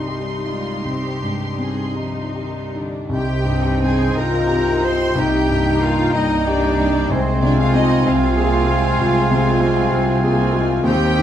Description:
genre	classical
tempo	51-66 BPM (dotted quarters)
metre	12/8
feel	rubato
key	C minor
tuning	A4 = 440 Hz
part	clear concert grand piano	melody	0.0-11.2 s	C2 to Ab4	-20 LUFS	left 1 dB	none
part	warm symphonic violin section	melody	0.0-11.2 s	G5 to C6	-33 LUFS	left 2 dB	none
part	clear studio violin section	second line	0.0-11.2 s	D4 to C6	-29 LUFS	left 1 dB	none
part	clear symphonic viola section	accompaniment	0.0-11.2 s	G3 to F4	-26 LUFS	right 2 dB	none
part	clear symphonic cello section	bass	0.0-11.2 s	D3 to C5	-25 LUFS	right 1 dB	none
part	clear oboe	second line	3.1-11.2 s	G5 to Ab5	-28 LUFS	right 2 dB	none
part	silver concert flute	second line	3.1-11.2 s	Bb5 to C6	-29 LUFS	equal	none
part	warm bassoon	accompaniment	3.1-11.2 s	C4 to Eb4	-28 LUFS	right 4 dB	none
part	mellow French horn section	sustained chords	3.1-11.2 s	G3 to F4	-22 LUFS	left 3 dB	none
part	clear symphonic double bass section	bass	3.1-11.2 s	C2 to Eb2	-23 LUFS	right 2 dB	none
room	wet recital hall reverb, RT60 1.4 s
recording	dark, warm production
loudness	-16 LUFS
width	side -10 dB against mid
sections	0.0-3.1 A section; 3.1-11.2 A section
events	none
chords	0.0 Cm; 5.2 Eb/C; 7.1 Fm/C

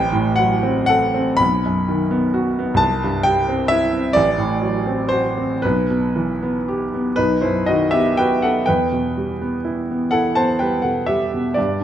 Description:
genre	classical, romantic nocturne for solo piano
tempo	38-45 BPM (dotted quarters)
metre	12/8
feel	rubato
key	E minor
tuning	A4 = 440 Hz
part	clear concert grand piano	solo	0.0-11.8 s	A1 to B5	-16 LUFS	equal	none
room	moderate recital hall reverb, RT60 1.3 s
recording	none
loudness	-16 LUFS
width	side -10 dB against mid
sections	0.0-8.7 A section; 8.7-11.8 B section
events	none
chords	0.0 F#dim/A; 1.4 B; 2.8 C; 4.2 F#dim/A; 5.6 Em/B; 7.2 B; 8.7 Em

